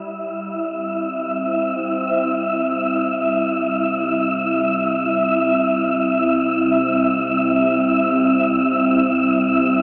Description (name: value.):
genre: dark ambient drone.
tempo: free time.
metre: none.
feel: none.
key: C major.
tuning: A4 = 440 Hz.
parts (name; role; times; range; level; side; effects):
sweeping resonant pad; sustained chords; 0.0-9.8 s; G3 to E4; -20 LUFS; equal; chorus.
deep rumbling drone; drone; 1.5-9.8 s; C2 to C3; -44 LUFS; equal; built-in reverb.
wind-like tuned noise texture; texture; 0.0-9.8 s; E4 to E5; -18 LUFS; equal; built-in reverb.
room: wet huge ambient reverb, RT60 7.7 s.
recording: dreamy mix soaked in reverb, small speaker sound.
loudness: -16 LUFS.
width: side -31 dB against mid.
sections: 0.0-9.8 A section.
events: fade-in on synth drone 0.0-9.8; fade-in on analog synth pad 0.0-9.8.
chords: 0.0 C.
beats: free time.